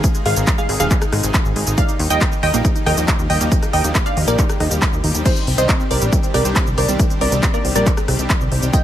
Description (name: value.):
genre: uplifting trance.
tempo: 138 BPM.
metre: 4/4.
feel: straight.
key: C minor.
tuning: A4 = 439 Hz.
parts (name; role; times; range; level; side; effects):
wide unison pluck; melody; 0.0-8.8 s; Eb4 to G5; -22 LUFS; equal; sidechain pumping, dub echo.
supersaw pad; sustained chords; 0.0-8.8 s; C3 to Ab4; -25 LUFS; equal; sidechain pumping.
analog pluck; arpeggios; 0.0-8.8 s; Eb3 to Eb5; -28 LUFS; right 3 dB; chorus, sidechain pumping, tape echo.
electronic kick drum; drums; 0.0-8.8 s; none; -18 LUFS; equal; none.
techno drum kit; drums; 0.0-8.8 s; crash cymbal, handclaps, hi-hat, rim click, shaker; -23 LUFS; equal; none.
plucky analog bass; bass; 0.3-8.7 s; Eb1 to Eb2; -20 LUFS; equal; sidechain pumping.
room: digital ambience.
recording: none.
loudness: -14 LUFS.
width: side -11 dB against mid.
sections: 0.0-8.8 A section.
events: none.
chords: 0.0 Ab; 1.8 Ebadd9; 5.3 Cmadd9.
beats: | 0.04 0.47 0.91 1.34 | 1.78 2.21 2.65 3.08 | 3.52 3.95 4.39 4.82 | 5.26 5.69 6.12 6.56 | 7.00 7.43 7.86 8.30 | 8.73.